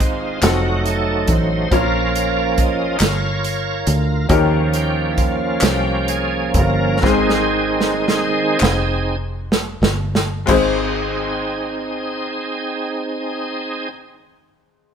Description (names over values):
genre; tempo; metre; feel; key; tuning
slow gospel; 29-46 BPM (dotted quarters); 6/8; straight; Ab major; A4 = 439 Hz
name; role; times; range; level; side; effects
bright upright piano; accompaniment; 0.0-14.9 s; Ab1 to Db5; -22 LUFS; left 5 dB; none
bright tonewheel organ; sustained chords; 0.0-13.9 s; Eb3 to Eb5; -20 LUFS; right 2 dB; slow rotary speaker, overdrive, chorus vibrato
fingered electric bass; bass; 0.0-13.9 s; F1 to Eb2; -22 LUFS; equal; none
natural country drum kit; drums; 0.0-10.8 s; crash cymbal, hi-hat, kick drum, snare drum; -20 LUFS; right 1 dB; none
group handclap; percussion; 0.4-11.1 s; none; -26 LUFS; left 2 dB; none
room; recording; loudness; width
moderate stone room reverb, RT60 1.3 s; band playing live in one room; -16 LUFS; side -7 dB against mid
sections
0.0-10.5 A section; 10.5-14.6 B section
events
tonewheel organ solo 0.0-10.5; slowing down 4.3-10.5; drum fill 7.0-10.5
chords
0.4 F7b9; 1.7 Bbm; 4.3 Eb7; 7.0 Ab